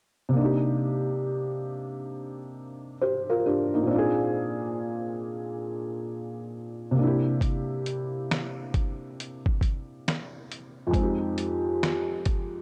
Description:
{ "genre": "lo-fi hip hop", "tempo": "68 BPM", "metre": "4/4", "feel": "swing 63% on 16ths", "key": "C minor", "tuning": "A4 = 440 Hz", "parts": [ { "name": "felt-muted upright piano", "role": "accompaniment", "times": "0.3-12.6 s", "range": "F2 to C5", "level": "-29 LUFS", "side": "equal", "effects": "cassette tape" }, { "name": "dusty soul sampler-style drum kit", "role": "drums", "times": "7.4-12.5 s", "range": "finger snaps, hi-hat, kick drum, snare drum", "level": "-30 LUFS", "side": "equal", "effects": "overdrive, vintage 12-bit sampler grit" } ], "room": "moderate plate reverb, RT60 2.8 s", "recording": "dark, warm production", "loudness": "-28 LUFS", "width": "mono", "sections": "0.3-12.6 A section", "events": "none", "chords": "0.3 Cm7; 3.9 Bb9; 7.0 C7; 10.9 Fm7" }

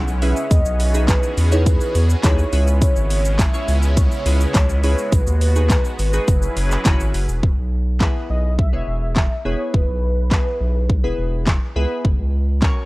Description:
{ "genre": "dance-pop", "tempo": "104 BPM", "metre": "4/4", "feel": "straight", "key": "unclear", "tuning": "A4 = 440 Hz", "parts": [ { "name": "warm velvety synth lead", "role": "melody", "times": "0.0-11.8 s", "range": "B4 to F#5", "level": "-26 LUFS", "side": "equal", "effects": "chorus, tape echo" }, { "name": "filtered supersaw swell", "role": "sustained chords", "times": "0.0-7.4 s", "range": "C#3 to B4", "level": "-29 LUFS", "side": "right 1 dB", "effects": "sidechain pumping" }, { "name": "round analog bass", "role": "bass", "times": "0.0-12.7 s", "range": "E1 to E2", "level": "-18 LUFS", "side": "equal", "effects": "sidechain pumping" }, { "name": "pop drum kit", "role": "drums", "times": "0.1-12.8 s", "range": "handclaps, hi-hat, kick drum, shaker, snare drum", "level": "-18 LUFS", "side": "equal", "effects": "none" }, { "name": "egg shaker", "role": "percussion", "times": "0.1-7.4 s", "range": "none", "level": "-43 LUFS", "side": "right 3 dB", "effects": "none" }, { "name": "glassy digital keys", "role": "accompaniment", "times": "0.2-12.9 s", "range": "B3 to C#5", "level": "-27 LUFS", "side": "equal", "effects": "chorus, phaser, sidechain pumping" } ], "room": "little or no reverb", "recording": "dry, gritty hardware recording, cassette tape", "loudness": "-16 LUFS", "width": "side -21 dB against mid", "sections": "0.0-7.4 A section; 7.4-12.9 B section", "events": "none", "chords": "0.0 C#m7; 0.5 Emaj7; 2.5 C#m7; 5.1 G#m7/B; 6.3 F#7sus4; 7.4 E; 12.0 F#" }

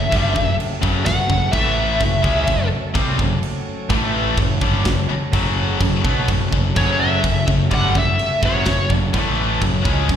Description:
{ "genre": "heavy metal", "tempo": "126 BPM", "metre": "4/4", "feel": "straight", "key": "F# phrygian", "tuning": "A4 = 440 Hz", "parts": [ { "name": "high-gain lead guitar", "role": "melody", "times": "0.0-2.7, 6.8-8.9 s", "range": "C#5 to F#5", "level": "-21 LUFS", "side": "left 1 dB", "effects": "distortion, slapback echo, ping-pong delay" }, { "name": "pipe organ, flutes", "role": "sustained chords", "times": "0.0-10.2 s", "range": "E3 to A5", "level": "-30 LUFS", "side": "right 1 dB", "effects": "none" }, { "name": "heavy high-gain guitar", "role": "riff", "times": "0.0-10.2 s", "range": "F#2 to C#4", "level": "-24 LUFS", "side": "left 13 dB", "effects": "distortion, slapback echo" }, { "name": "sludgy distorted guitar", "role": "riff", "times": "0.0-10.2 s", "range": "F#2 to C#4", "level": "-25 LUFS", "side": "equal", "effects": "overdrive, slapback echo" }, { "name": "tight distorted guitar", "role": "riff", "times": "0.0-10.2 s", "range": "F#2 to C#4", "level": "-27 LUFS", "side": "right 10 dB", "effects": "distortion, slapback echo" }, { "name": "growling picked electric bass", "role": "bass", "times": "0.0-10.2 s", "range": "F#1 to C#2", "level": "-21 LUFS", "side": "equal", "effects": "overdrive" }, { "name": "tight metal drum kit", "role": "drums", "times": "0.1-10.2 s", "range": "crash cymbal, kick drum, snare drum", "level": "-23 LUFS", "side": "right 1 dB", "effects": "none" } ], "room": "little or no reverb", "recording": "live gig heard through the venue's PA, recital hall reverb", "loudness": "-16 LUFS", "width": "side -9 dB against mid", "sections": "0.0-10.2 A section", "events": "half time 0.0-10.2", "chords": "0.0 F#m; 1.5 A5; 2.0 F#m; 3.9 A5; 4.4 F#m; 9.1 A5; 9.6 F#m" }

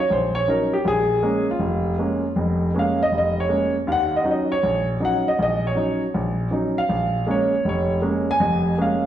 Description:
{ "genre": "solo jazz", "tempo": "159 BPM", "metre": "4/4", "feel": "swing 65% on 8ths", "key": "Bb minor", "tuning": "A4 = 440 Hz", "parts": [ { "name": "warm grand piano", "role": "solo", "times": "0.0-9.1 s", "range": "F1 to Ab5", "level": "-19 LUFS", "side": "equal", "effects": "none" } ], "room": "wet recital hall reverb, RT60 1.4 s", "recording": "recorded in a church or concert hall", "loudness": "-19 LUFS", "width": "side -11 dB against mid", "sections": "0.0-9.1 A section", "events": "grand piano solo 0.0-9.1", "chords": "0.0 Ebm7; 0.9 Bbm7; 3.9 Ebm7; 6.9 Bbm7" }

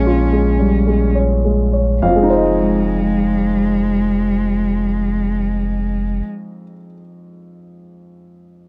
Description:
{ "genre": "neoclassical piano and strings", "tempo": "35 BPM (dotted quarters)", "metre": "6/8", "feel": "rubato", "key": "F minor", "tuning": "A4 = 440 Hz", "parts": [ { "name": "dark cello", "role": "second line", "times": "0.0-6.2 s", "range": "Ab3 to Db4", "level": "-22 LUFS", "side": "equal", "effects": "none" }, { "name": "warm grand piano", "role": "accompaniment", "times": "0.0-8.7 s", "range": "Bb1 to F5", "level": "-21 LUFS", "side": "equal", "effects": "none" }, { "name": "pure sine sub bass", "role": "bass", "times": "0.0-6.2 s", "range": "F1 to Bb1", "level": "-22 LUFS", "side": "equal", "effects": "none" } ], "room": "studio ambience", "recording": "dry, close 1970s-style studio recording", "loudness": "-17 LUFS", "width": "mono", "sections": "0.0-2.0 A section; 2.0-5.5 B section", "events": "slowing down 0.0-2.0", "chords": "0.0 Bbm7; 2.0 Fm7" }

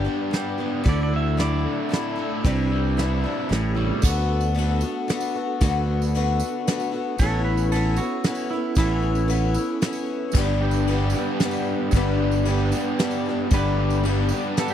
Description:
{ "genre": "folk rock and heartland rock", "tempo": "114 BPM", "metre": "3/4", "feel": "straight", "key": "D major from 4.0 s", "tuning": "A4 = 440 Hz", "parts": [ { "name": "picked twelve-string acoustic guitar", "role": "accompaniment", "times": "0.0-14.7 s", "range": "G2 to G4", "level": "-27 LUFS", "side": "left 8 dB", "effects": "none" }, { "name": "mellow tonewheel organ", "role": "sustained chords", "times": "0.0-14.7 s", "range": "G3 to D5", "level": "-32 LUFS", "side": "right 5 dB", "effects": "chorus vibrato, stopped rotary speaker" }, { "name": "biting overdriven guitar", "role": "riff", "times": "0.0-4.0, 10.3-14.7 s", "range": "G2 to G4", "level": "-26 LUFS", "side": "right 1 dB", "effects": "none" }, { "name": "modern bright fingered electric bass", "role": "bass", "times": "0.0-14.3 s", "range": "G1 to D2", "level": "-23 LUFS", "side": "right 1 dB", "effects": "none" }, { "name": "soft brush drum kit", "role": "drums", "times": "0.3-14.7 s", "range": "crash cymbal, hi-hat, kick drum, ride cymbal, snare drum", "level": "-24 LUFS", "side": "right 1 dB", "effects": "none" }, { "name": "clean lap steel guitar", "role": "second line", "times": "0.9-2.9, 7.2-9.8, 13.5-14.7 s", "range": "E4 to E5", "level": "-30 LUFS", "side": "right 9 dB", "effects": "none" }, { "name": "tambourine", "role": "percussion", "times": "4.0-14.7 s", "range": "none", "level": "-41 LUFS", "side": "right 14 dB", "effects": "none" } ], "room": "little or no reverb", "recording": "dry, close 1970s-style studio recording", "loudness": "-20 LUFS", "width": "side -10 dB against mid", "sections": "0.0-4.0 A section; 4.0-14.7 B section", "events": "none", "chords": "0.0 G; 0.9 Dsus2; 2.4 Cadd9; 3.5 A7; 4.0 D6; 7.2 Aadd9; 10.3 G" }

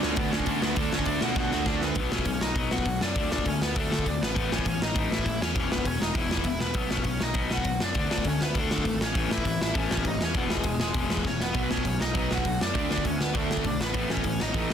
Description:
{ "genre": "punk rock", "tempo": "200 BPM", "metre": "4/4", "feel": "straight", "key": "unclear", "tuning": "A4 = 441 Hz", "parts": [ { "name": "smooth overdriven lead guitar", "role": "melody", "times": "0.0-14.7 s", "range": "G#3 to F#5", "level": "-32 LUFS", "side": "equal", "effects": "none" }, { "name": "cranked stack guitar", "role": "riff", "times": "0.0-14.7 s", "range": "E2 to D4", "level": "-31 LUFS", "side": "left 7 dB", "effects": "overdrive" }, { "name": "crunchy overdriven guitar", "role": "riff", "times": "0.0-2.0 s", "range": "D3 to D4", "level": "-36 LUFS", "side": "right 2 dB", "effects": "none" }, { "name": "overdriven semi-hollow guitar", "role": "riff", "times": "0.0-2.0, 11.5-14.7 s", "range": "A2 to D4", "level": "-32 LUFS", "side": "right 16 dB", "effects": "none" }, { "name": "fuzz picked electric bass", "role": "bass", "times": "0.0-14.7 s", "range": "E1 to D3", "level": "-32 LUFS", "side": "equal", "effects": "overdrive" }, { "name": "big rock drum kit", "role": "drums", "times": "0.0-14.7 s", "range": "hi-hat, kick drum, snare drum", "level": "-28 LUFS", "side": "equal", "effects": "none" } ], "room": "little or no reverb", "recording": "dense, heavily limited modern master", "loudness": "-24 LUFS", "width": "side -8 dB against mid", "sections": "0.0-2.0 A section; 2.0-14.7 B section", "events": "drum fill 1.4-2.0, 11.3", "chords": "0.0 D; 2.0 B; 3.2 D5; 4.2 A; 5.6 E5; 6.8 B; 8.0 D5; 9.0 A; 10.4 E; 11.6 B; 12.8 D5; 13.8 A" }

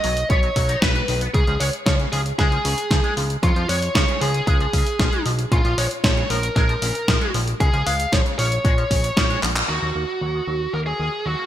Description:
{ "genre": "italo disco", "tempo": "115 BPM", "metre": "4/4", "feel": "straight", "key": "Eb minor", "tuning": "A4 = 440 Hz", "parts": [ { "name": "bluesy overdriven lead guitar", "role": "melody", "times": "0.0-11.5 s", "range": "F4 to F5", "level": "-24 LUFS", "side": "right 1 dB", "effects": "distortion, digital delay" }, { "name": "electric guitar with an envelope filter", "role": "arpeggios", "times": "0.0-11.5 s", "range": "Db3 to B4", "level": "-29 LUFS", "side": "left 1 dB", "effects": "ensemble chorus, low-pass filter, digital delay" }, { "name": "fat analog bass", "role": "bass", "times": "0.0-11.4 s", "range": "Bb1 to F2", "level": "-24 LUFS", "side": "equal", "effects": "none" }, { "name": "clean 12-bit digital drum machine", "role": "drums", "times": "0.0-9.7 s", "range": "handclaps, hi-hat, snare drum", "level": "-24 LUFS", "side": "equal", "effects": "gated reverb" }, { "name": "electronic kick drum", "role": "drums", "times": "0.3-9.3 s", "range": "none", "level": "-20 LUFS", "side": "equal", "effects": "overdrive" } ], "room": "light reverb", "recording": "bright 1980s-style digital production", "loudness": "-18 LUFS", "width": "side -12 dB against mid", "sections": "0.0-9.7 A section; 9.7-11.5 B section", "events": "drum fill 9.4; band accent 9.6; filter sweep on clean electric guitar 9.7-11.5", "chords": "0.0 B; 1.3 Db; 5.5 Bbm; 9.7 Ebm" }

